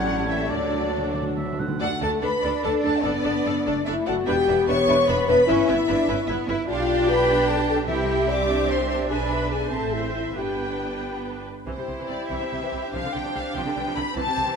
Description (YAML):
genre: classical, dramatic, fast romantic movement for symphony orchestra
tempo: 98 BPM (dotted quarters)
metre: 6/8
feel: rubato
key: D major, C major from 6.7 s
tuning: A4 = 441 Hz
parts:
  - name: warm symphonic violin section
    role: melody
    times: 0.0-14.6 s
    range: C5 to B5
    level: -32 LUFS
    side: left 3 dB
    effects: none
  - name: mellow clarinet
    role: second line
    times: 0.0-1.6 s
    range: D4 to E4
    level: -37 LUFS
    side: left 2 dB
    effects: none
  - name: mellow flute section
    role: second line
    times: 0.0-1.2 s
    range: D5 to F#5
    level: -33 LUFS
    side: left 2 dB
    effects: none
  - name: warm oboe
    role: second line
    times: 0.0-1.8 s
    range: C#5 to F#5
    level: -34 LUFS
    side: right 1 dB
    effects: none
  - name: warm symphonic violin section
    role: second line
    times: 0.0-14.6 s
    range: F#4 to D6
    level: -30 LUFS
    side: left 1 dB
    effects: none
  - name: clear symphonic viola section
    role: accompaniment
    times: 0.0-14.6 s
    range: C3 to C5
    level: -29 LUFS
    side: right 2 dB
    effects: none
  - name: warm bassoon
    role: accompaniment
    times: 0.0-1.6 s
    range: F#3 to G3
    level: -33 LUFS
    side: right 2 dB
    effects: none
  - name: mellow French horn section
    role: sustained chords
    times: 0.0-11.0 s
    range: F#3 to D5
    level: -24 LUFS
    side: left 3 dB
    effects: none
  - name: rich symphonic cello section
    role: bass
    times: 0.0-14.5 s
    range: C3 to E4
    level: -30 LUFS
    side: right 3 dB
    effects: none
  - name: rich symphonic double bass section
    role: bass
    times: 0.0-14.4 s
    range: E1 to D2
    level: -31 LUFS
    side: right 4 dB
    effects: none
  - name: timpani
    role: percussion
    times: 0.5-1.7, 7.9-8.4 s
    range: C3 to D3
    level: -33 LUFS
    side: right 1 dB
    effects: none
room: wet scoring stage reverb, RT60 1.9 s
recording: minimal, uncompressed stereo recording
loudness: -21 LUFS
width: side -6 dB against mid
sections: 0.0-1.8 A section; 1.8-11.7 A section; 11.7-14.6 B section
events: timpani fill 0.5-1.8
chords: 0.0 A7; 0.5 D; 1.8 D5; 3.0 D/F#; 4.3 Em7; 5.5 Em/G; 6.7 G7/B; 7.9 C; 9.1 E5/B; 9.7 Am; 10.4 G; 11.7 C; 12.9 G7/C